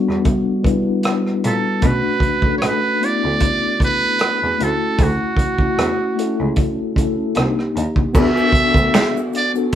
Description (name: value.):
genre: R&B, neo-soul.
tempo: 76 BPM.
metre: 4/4.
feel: swing 55% on 16ths.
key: B minor.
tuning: A4 = 440 Hz.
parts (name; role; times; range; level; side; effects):
mellow tine electric piano; accompaniment; 0.0-9.8 s; G3 to B4; -20 LUFS; left 3 dB; medium stereo tremolo.
rich cello; bass; 0.1-8.8 s; C2 to B2; -23 LUFS; right 1 dB; none.
crunchy breakbeat drum kit; drums; 0.1-9.8 s; crash cymbal, finger snaps, hi-hat, kick drum, rim click, snare drum; -18 LUFS; right 1 dB; none.
trumpet with metal mute; melody; 1.5-9.5 s; F#4 to E5; -19 LUFS; right 3 dB; none.
egg shaker and finger snaps; percussion; 8.1-9.7 s; none; -35 LUFS; right 7 dB; none.
room: moderate studio reverb, RT60 0.8 s.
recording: band playing live in one room.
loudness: -15 LUFS.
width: side -10 dB against mid.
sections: 0.0-8.1 A section; 8.1-9.8 B section.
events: none.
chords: 0.0 A13sus4; 1.8 Bm7; 4.6 Dmaj9 (rootless); 7.4 Cm7 (rootless); 8.1 E9sus4.